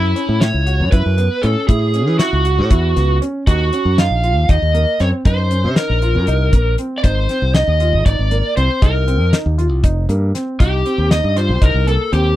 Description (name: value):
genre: progressive instrumental, band music in an uneven meter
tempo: 236 BPM (eighths)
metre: 7/8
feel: straight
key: unclear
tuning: A4 = 439 Hz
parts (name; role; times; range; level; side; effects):
- lead guitar through a small cranked amp; melody; 0.0-12.4 s; E4 to E#5; -19 LUFS; equal; overdrive
- warm baby grand piano; arpeggios; 0.0-12.3 s; A#3 to F#4; -24 LUFS; right 1 dB; none
- modern bright fingered electric bass; bass; 0.0-12.4 s; E#1 to E3; -16 LUFS; equal; none
- damped 70s drum kit; drums; 0.2-12.2 s; hi-hat, kick drum, snare drum; -15 LUFS; equal; none
room: little or no reverb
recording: dry, close 1970s-style studio recording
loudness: -13 LUFS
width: side -14 dB against mid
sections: 0.0-12.4 A section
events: none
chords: 0.0 F#m7; 3.5 D#m; 7.0 G#; 10.6 Cm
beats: 0.16 0.41 0.67 0.92 1.18 1.43 | 1.69 1.94 2.20 2.45 2.71 2.96 3.22 | 3.47 3.73 3.98 4.24 4.49 4.75 5.00 | 5.26 5.51 5.77 6.02 6.28 6.53 6.79 | 7.04 7.29 7.55 7.80 8.06 8.31 8.57 | 8.82 9.08 9.33 9.58 9.84 10.09 10.35 | 10.60 10.86 11.11 11.36 11.62 11.87 12.12